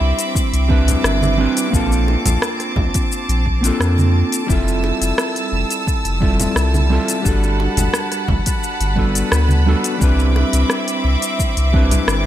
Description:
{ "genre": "sunset chillout", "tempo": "87 BPM", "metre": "4/4", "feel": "straight", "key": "F major", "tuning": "A4 = 440 Hz", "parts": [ { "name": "mellow electric guitar", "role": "accompaniment", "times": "0.0-12.3 s", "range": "G3 to B4", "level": "-21 LUFS", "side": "right 1 dB", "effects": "auto-pan, digital delay" }, { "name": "clear studio string section", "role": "sustained chords", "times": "0.0-12.3 s", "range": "G3 to E6", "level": "-23 LUFS", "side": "right 2 dB", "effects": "none" }, { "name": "warm sub bass", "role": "bass", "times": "0.0-12.3 s", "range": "F1 to F2", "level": "-17 LUFS", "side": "equal", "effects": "none" }, { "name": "deep house drum kit", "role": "drums", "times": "0.2-12.2 s", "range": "hi-hat, rim click, shaker", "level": "-23 LUFS", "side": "left 2 dB", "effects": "none" }, { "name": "electronic kick drum", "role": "drums", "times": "0.4-11.9 s", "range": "none", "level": "-19 LUFS", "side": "equal", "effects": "none" }, { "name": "congas and bongos", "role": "percussion", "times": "0.9-12.0 s", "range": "none", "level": "-25 LUFS", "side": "right 2 dB", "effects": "none" } ], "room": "light reverb", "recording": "bright 1980s-style digital production", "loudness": "-15 LUFS", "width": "side -12 dB against mid", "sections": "0.0-12.3 A section", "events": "none", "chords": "0.0 Cmaj9; 1.7 Bbmaj9; 4.5 Fmaj9; 7.3 Gmaj9; 10.0 Cmaj9" }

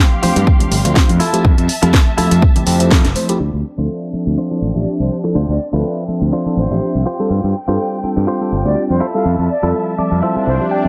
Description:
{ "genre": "filtered disco house", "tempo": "123 BPM", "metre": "4/4", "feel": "swing 55% on 16ths", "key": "D minor", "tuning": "A4 = 440 Hz", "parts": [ { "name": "mellow tine electric piano", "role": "accompaniment", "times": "0.0-10.9 s", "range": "F3 to E5", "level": "-21 LUFS", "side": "equal", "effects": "phaser, sidechain pumping, low-pass filter" }, { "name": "clear studio violin section", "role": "sustained chords", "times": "0.0-10.9 s", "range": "C4 to C6", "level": "-29 LUFS", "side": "equal", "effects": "vintage 12-bit sampler grit, sidechain pumping, low-pass filter" }, { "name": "direct-recorded clean electric guitar", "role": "riff", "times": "0.0-10.9 s", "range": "D4 to G5", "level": "-25 LUFS", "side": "equal", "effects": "vintage 12-bit sampler grit, sidechain pumping, low-pass filter" }, { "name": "growling fingered electric bass", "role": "bass", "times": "0.2-10.9 s", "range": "F1 to G2", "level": "-19 LUFS", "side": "equal", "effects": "overdrive, sidechain pumping, low-pass filter" }, { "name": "house drum kit", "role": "drums", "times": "0.2-3.4 s", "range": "hi-hat, snare drum", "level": "-21 LUFS", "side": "equal", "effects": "overdrive, sidechain pumping on hats, low-pass filter on hats, low-pass filter on snare" }, { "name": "tambourine and congas", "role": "percussion", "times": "0.2-3.4 s", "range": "none", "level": "-26 LUFS", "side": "equal", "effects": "none" }, { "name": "electronic kick drum", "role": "drums", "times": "0.5-3.0 s", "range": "none", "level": "-14 LUFS", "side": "equal", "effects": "overdrive" }, { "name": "jazz flute", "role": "melody", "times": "4.8-10.9 s", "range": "C5 to F5", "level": "-26 LUFS", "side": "equal", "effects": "sidechain pumping, low-pass filter, dub echo" }, { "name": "swell", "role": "sound effects", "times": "10.4-10.9 s", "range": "none", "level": "-24 LUFS", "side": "equal", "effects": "none" } ], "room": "light reverb", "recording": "none", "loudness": "-15 LUFS", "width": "mono", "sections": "0.0-3.4 A section; 3.4-10.9 B section", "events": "filter sweep 0.0-3.4, 3.4-10.9; band accent 2.9; clean electric guitar fill 9.7-10.9; swell 10.4-10.9", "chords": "0.0 G7sus4; 1.2 Fmaj7; 3.4 Dm7; 7.1 G7sus4; 9.0 Fmaj7" }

